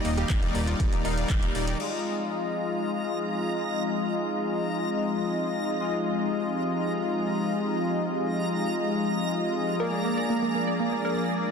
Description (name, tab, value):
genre	progressive house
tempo	120 BPM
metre	4/4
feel	straight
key	F dorian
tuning	A4 = 438 Hz
part	warm analog pad	sustained chords	0.0-11.5 s	Eb3 to D5	-32 LUFS	right 2 dB	chorus, sidechain pumping
part	glassy wavetable pluck	arpeggios	0.0-1.7, 9.8-11.5 s	Bb3 to D5	-31 LUFS	right 2 dB	chorus, sidechain pumping, ping-pong delay
part	soft supersaw	stabs	0.0-11.5 s	G3 to F5	-28 LUFS	left 3 dB	sidechain pumping, low-pass filter, ping-pong delay
part	fat analog bass	bass	0.0-1.7 s	Eb1	-30 LUFS	equal	tube saturation, sidechain pumping
part	deep house drum kit	drums	0.0-1.9 s	crash cymbal, handclaps, hi-hat, rim click	-37 LUFS	equal	overdrive, sidechain pumping on hats, studio reverb, sidechain pumping on cymbals
part	backwards swelling texture	texture	0.0-11.5 s	Bb5	-37 LUFS	right 1 dB	built-in reverb, sidechain pumping
part	electronic kick drum	drums	0.3-1.4 s	none	-26 LUFS	equal	overdrive, studio reverb
room	light reverb, digital ambience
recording	dense, heavily limited modern master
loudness	-25 LUFS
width	side -6 dB against mid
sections	0.0-1.8 A section; 1.8-11.5 B section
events	drop 0.0-1.8; band accent 1.3; filter sweep on supersaw synth 1.8-11.5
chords	0.0 Ebmaj7; 1.8 Fm7; 9.8 Bb7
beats	0.30 0.80 1.30 | 1.80 2.30 2.80 3.30 | 3.80 4.30 4.80 5.30 | 5.80 6.30 6.80 7.30 | 7.80 8.30 8.80 9.30 | 9.80 10.30 10.80 11.30